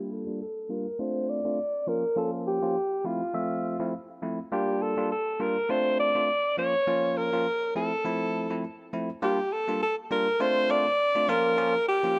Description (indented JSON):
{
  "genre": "afrobeats",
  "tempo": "102 BPM",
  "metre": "4/4",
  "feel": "swing 55% on 16ths",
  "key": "unclear",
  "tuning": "A4 = 439 Hz",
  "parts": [
    { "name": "warm alto saxophone", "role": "melody", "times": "0.0-12.2 s", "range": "F4 to D5", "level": "-28 LUFS", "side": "equal", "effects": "low-pass filter, tape echo" },
    { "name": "bell-like tine electric piano", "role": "accompaniment", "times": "0.0-12.2 s", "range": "F3 to E5", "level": "-33 LUFS", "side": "equal", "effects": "low-pass filter" }
  ],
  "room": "light reverb, small room ambience",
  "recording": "none",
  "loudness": "-28 LUFS",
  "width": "mono",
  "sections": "0.0-9.2 A section; 9.2-12.2 B section",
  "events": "filter sweep 0.0-9.2",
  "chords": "0.0 Gm7; 1.0 Dm7; 1.9 Bbm; 3.0 Fmaj7; 4.5 Gm7; 5.7 Dm7; 6.6 Bbm; 7.8 Fmaj7; 9.2 Gm7; 10.4 Dm7; 11.3 Bbm"
}